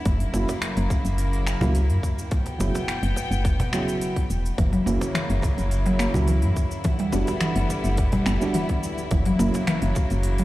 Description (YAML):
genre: organic downtempo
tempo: 106 BPM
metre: 4/4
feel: straight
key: F# phrygian dominant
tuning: A4 = 440 Hz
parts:
  - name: warm studio string section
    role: sustained chords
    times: 0.0-10.4 s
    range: B2 to G5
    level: -30 LUFS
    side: left 1 dB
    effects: sidechain pumping
  - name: woody FM bass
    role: bass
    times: 0.1-10.4 s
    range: E1 to F#2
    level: -23 LUFS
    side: equal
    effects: none
  - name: electronic kick drum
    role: drums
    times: 0.1-10.1 s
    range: none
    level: -24 LUFS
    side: equal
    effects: overdrive
  - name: organic electronic drum kit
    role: drums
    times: 0.1-10.4 s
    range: finger snaps, hi-hat, shaker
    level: -34 LUFS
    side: equal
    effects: overdrive
  - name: felt-muted upright piano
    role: accompaniment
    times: 0.3-9.6 s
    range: C#3 to F#4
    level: -30 LUFS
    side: right 2 dB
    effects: sidechain pumping, ping-pong delay
  - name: cajon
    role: percussion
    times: 0.3-10.1 s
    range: none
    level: -31 LUFS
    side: right 1 dB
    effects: none
  - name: mallet-like synth pluck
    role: arpeggios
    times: 4.6-10.4 s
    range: E3 to B3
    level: -26 LUFS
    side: equal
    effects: chorus, ping-pong delay
room: light reverb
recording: played on a big sound system in a bare room, large studio reverb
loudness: -21 LUFS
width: side -16 dB against mid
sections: 0.0-10.4 A section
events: none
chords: 0.1 F#7; 2.3 G/F#; 4.6 F#7; 6.8 Em7/F#; 9.1 F#7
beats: | 0.06 0.62 1.19 1.75 | 2.32 2.88 3.45 4.02 | 4.58 5.15 5.71 6.28 | 6.85 7.41 7.98 8.54 | 9.11 9.68 10.24